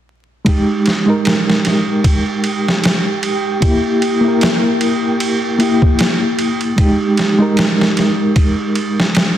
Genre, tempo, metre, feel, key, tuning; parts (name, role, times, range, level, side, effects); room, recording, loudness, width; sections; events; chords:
trip hop; 76 BPM; 4/4; swing 57% on 16ths; A4 = 439 Hz
mellow reed electric piano; accompaniment; 0.4-9.4 s; Ab3 to Bb4; -15 LUFS; equal; tremolo, low-pass filter, tape echo
trip hop sampler-style drum kit; drums; 0.5-9.4 s; kick drum, ride cymbal, snare drum; -16 LUFS; equal; overdrive
wind-like tuned noise texture; texture; 1.2-9.4 s; G4; -24 LUFS; right 3 dB; built-in reverb
light reverb; dense, heavily limited modern master, vinyl crackle, faint mains hum; -12 LUFS; side -11 dB against mid
0.5-9.4 A section
0.5 Ebadd11/Ab; 3.6 Edim/Bb; 6.8 Ebadd11/Ab